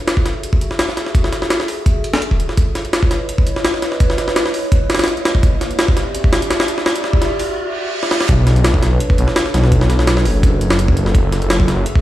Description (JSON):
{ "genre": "drum and bass, jungle", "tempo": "168 BPM", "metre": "4/4", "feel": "straight", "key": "B dorian", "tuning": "A4 = 441 Hz", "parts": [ { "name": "warbly tape-like pad", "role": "sustained chords", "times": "0.0-12.0 s", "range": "D4 to E5", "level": "-24 LUFS", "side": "right 1 dB", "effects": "chorus, built-in reverb" }, { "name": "jungle sampler-style drum kit", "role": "drums", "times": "0.1-12.0 s", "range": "hi-hat, kick drum, snare drum", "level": "-15 LUFS", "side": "equal", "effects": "none" }, { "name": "riser and reverse cymbal", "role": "sound effects", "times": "3.6-8.3 s", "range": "none", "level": "-28 LUFS", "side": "right 1 dB", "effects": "none" }, { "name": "detuned saw bass", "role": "bass", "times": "8.3-11.8 s", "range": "F#1 to B1", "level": "-14 LUFS", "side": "equal", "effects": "tube saturation" } ], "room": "light reverb, digital ambience", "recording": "played on a big sound system in a bare room, large studio reverb, vinyl crackle", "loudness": "-13 LUFS", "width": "side -14 dB against mid", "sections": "0.0-8.3 A section; 8.3-12.0 B section", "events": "build-up 0.0-8.3; riser 3.6-7.6; reverse cymbal 7.6-8.3; drum fill 8.0; drop 8.3-12.0", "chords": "0.0 F#m9; 2.6 C#m9; 5.4 Em9; 8.3 Bm9; 11.1 F#m9" }